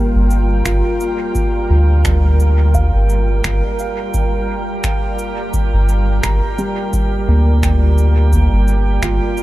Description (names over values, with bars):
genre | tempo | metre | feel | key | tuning
ambient dub | 86 BPM | 4/4 | swing 58% on 16ths | G minor | A4 = 442 Hz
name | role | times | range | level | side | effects
soft additive organ-like pad | sustained chords | 0.0-9.4 s | G3 to G5 | -22 LUFS | right 1 dB | ensemble chorus, built-in reverb
felt-muted upright piano | arpeggios | 0.0-9.4 s | G3 to Bb5 | -24 LUFS | right 1 dB | low-pass filter, dub echo
drifting glass-harmonics texture | texture | 0.1-9.4 s | G5 | -30 LUFS | right 7 dB | chorus, built-in reverb
soft dub sub bass | bass | 0.2-9.2 s | G1 to D2 | -12 LUFS | equal | none
electronic shaker and finger snaps | drums | 0.3-9.4 s | none | -26 LUFS | right 1 dB | overdrive, dub echo
electronic kick drum | drums | 0.7-9.2 s | none | -20 LUFS | equal | none
room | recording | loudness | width
light reverb | none | -13 LUFS | side -16 dB against mid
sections
0.0-9.4 A section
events
filter sweep on felt piano 0.0-9.4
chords
0.0 Gm7